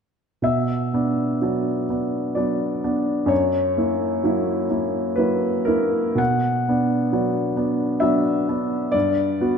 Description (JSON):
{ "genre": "classical, romantic nocturne for solo piano", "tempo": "64 BPM", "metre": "3/4", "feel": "uneven beats, rubato", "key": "B minor", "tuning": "A4 = 438 Hz", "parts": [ { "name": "clear upright piano", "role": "solo", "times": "0.4-9.6 s", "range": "F#2 to F#5", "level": "-19 LUFS", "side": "equal", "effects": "none" } ], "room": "wet scoring stage reverb, RT60 1.8 s", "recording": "none", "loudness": "-19 LUFS", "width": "side -6 dB against mid", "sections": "0.5-9.6 A section", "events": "none", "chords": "0.5 Bm; 3.3 F#7; 6.2 Bm; 8.9 Gmaj7" }